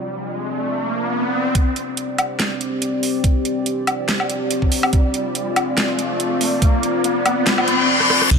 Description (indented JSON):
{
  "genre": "deep dubstep",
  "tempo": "142 BPM",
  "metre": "4/4",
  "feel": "swing 54% on 16ths, half-time",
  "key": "unclear",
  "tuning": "A4 = 440 Hz",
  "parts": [
    { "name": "dark analog pad", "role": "sustained chords", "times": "0.0-8.4 s", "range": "C4 to D5", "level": "-22 LUFS", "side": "left 1 dB", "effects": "chorus" },
    { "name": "riser and reverse cymbal", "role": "sound effects", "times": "0.0-8.3 s", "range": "none", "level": "-22 LUFS", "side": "left 1 dB", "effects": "none" },
    { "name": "dubstep drum kit", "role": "drums", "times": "1.6-8.4 s", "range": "crash cymbal, hi-hat, rim click, snare drum, woodblock", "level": "-21 LUFS", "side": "equal", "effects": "none" },
    { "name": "electronic kick drum", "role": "drums", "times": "1.6-8.4 s", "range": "none", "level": "-16 LUFS", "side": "right 1 dB", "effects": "none" },
    { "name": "deep soft wobble bass", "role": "bass", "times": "8.3-8.4 s", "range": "C2", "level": "-13 LUFS", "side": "equal", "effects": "chorus" }
  ],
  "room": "light reverb",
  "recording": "none",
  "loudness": "-17 LUFS",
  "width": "side -6 dB against mid",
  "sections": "0.0-1.6 A section; 1.6-8.3 B section",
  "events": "riser 0.0-1.6, 1.6-7.9; build-up 1.6-8.3; reverse cymbal 7.5-8.3; drum fill 8.0-8.3",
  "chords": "0.0 Csus2",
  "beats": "0.28 0.70 1.13 | 1.55 1.97 2.40 2.82 | 3.24 3.66 4.08 4.51 | 4.93 5.35 5.78 6.20 | 6.62 7.04 7.47 7.89 | 8.31"
}